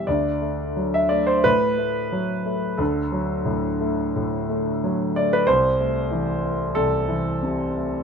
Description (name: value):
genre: neoclassical minimalist piano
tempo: 83-95 BPM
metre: 4/4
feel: rubato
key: unclear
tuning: A4 = 438 Hz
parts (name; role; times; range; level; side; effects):
- warm grand piano; solo; 0.0-8.0 s; C2 to E5; -20 LUFS; equal; none
room: light reverb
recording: minimal, uncompressed stereo recording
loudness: -20 LUFS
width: side -6 dB against mid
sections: 0.0-8.0 A section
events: none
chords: 0.1 D; 5.5 Am/C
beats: | 0.06 0.77 1.46 2.13 | 2.80 3.47 4.14 4.82 | 5.46 6.10 6.75 7.42